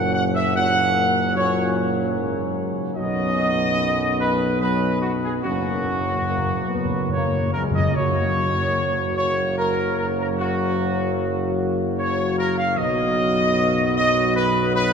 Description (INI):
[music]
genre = classical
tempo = 74 BPM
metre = 3/4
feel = straight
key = F# major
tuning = A4 = 440 Hz
[part]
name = warm trumpet section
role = melody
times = 0.0-14.9 s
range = F#4 to F#5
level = -22 LUFS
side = equal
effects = none
[part]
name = warm French horn section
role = sustained chords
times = 0.0-14.9 s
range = G#3 to F#4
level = -28 LUFS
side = left 2 dB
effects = none
[part]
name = warm trombone section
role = sustained chords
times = 0.0-14.9 s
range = F#2 to F#3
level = -28 LUFS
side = right 1 dB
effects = none
[part]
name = mellow tuba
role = bass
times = 0.0-14.9 s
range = F#1 to B1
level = -25 LUFS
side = right 1 dB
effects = none
[part]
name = timpani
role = percussion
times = 5.4-9.1 s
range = F#2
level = -26 LUFS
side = equal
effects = none
[sound]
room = wet cathedral reverb, RT60 5.2 s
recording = minimal, uncompressed stereo recording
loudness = -19 LUFS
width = side -6 dB against mid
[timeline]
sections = 0.0-8.0 A section; 8.0-14.9 B section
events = timpani fill 5.4-8.0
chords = 0.0 F#; 3.0 Badd9; 5.4 F#; 12.8 B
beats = | 0.55 1.36 2.17 | 2.98 3.79 4.61 | 5.45 6.29 7.13 | 7.97 8.78 9.59 | 10.39 11.19 11.98 | 12.77 13.57 14.36